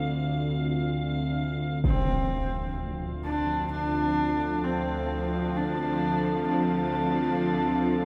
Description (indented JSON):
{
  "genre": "dark ambient drone",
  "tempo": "64 BPM",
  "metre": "4/4",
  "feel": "straight",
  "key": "unclear",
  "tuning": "A4 = 443 Hz",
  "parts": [
    { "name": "dark analog pad", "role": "sustained chords", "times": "0.0-8.1 s", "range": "D3 to A4", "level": "-32 LUFS", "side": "equal", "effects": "chorus, phaser" },
    { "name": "dark detuned synth bell", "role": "arpeggios", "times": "0.0-8.1 s", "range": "none", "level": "barely audible", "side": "none", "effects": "none" },
    { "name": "bowed-like drone", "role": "drone", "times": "0.0-8.1 s", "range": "D2 to F3", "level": "-34 LUFS", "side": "equal", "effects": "built-in reverb" },
    { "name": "icy glass pad", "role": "texture", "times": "0.0-8.1 s", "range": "F5", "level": "-44 LUFS", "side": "equal", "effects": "chorus, built-in reverb" },
    { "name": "impact", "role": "percussion", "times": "1.8-2.0 s", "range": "none", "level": "-33 LUFS", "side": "equal", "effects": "low-pass filter on sfx" },
    { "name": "rich horsehead fiddle", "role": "melody", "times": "1.9-8.1 s", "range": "C4 to D4", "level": "-31 LUFS", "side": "equal", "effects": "diffuse ambient delay" }
  ],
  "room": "wet cathedral reverb, RT60 5.3 s",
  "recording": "none",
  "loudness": "-28 LUFS",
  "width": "mono",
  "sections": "0.0-1.8 A section; 1.8-8.1 B section",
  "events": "fade-in on ambient pad 1.8-8.1; filter sweep on synth drone 1.8-8.1",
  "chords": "0.0 Dm"
}